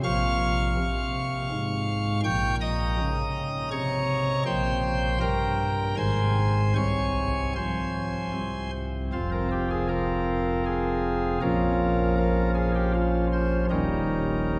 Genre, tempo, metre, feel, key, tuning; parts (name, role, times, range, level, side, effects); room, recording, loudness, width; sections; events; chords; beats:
classical, chorale-style piece for pipe organ; 75-82 BPM; 3/4; rubato; F minor; A4 = 440 Hz
pipe organ, cornet; solo; 0.0-14.6 s; Eb1 to G6; -26 LUFS; equal
wet cathedral reverb, RT60 5.6 s; heard from further back in the room; -26 LUFS; mono
0.0-9.1 A section; 9.1-14.6 B section
0.0 Bbm; 2.2 Gdim/Bb; 4.5 C5/Bb; 6.0 Ab; 6.8 Fm/C; 8.3 Ab/C; 9.1 Fm; 11.4 Bbm; 13.7 Eb7
| 0.04 0.77 1.51 | 2.24 2.98 3.72 | 4.46 5.20 5.97 | 6.76 7.55 8.34 | 9.13 9.90 10.66 | 11.42 12.18 12.94 | 13.70 14.45